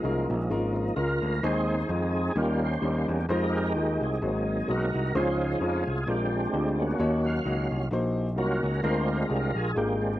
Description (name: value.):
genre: gospel.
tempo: 130 BPM.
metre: 4/4.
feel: swing 56% on 8ths.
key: Ab major.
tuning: A4 = 444 Hz.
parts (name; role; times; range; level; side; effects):
dark upright piano; accompaniment; 0.0-10.1 s; Ab2 to Eb5; -30 LUFS; left 2 dB; slapback echo.
tonewheel organ; sustained chords; 0.0-10.2 s; F3 to F5; -29 LUFS; right 2 dB; slow rotary speaker, overdrive, chorus vibrato.
overdriven picked electric bass; bass; 0.0-10.1 s; Ab1 to F2; -30 LUFS; equal; none.
room: little or no reverb.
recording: recorded outdoors, with no room sound.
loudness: -25 LUFS.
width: side -14 dB against mid.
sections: 0.0-10.2 A section.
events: tonewheel organ solo 0.0-10.2.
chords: 0.0 Db6; 1.4 Ab/Eb; 2.4 Eb7; 3.3 Fm7; 4.2 Ab7; 5.1 Dbmaj7; 6.1 Bb7; 7.0 Ebm7; 8.8 Bb7.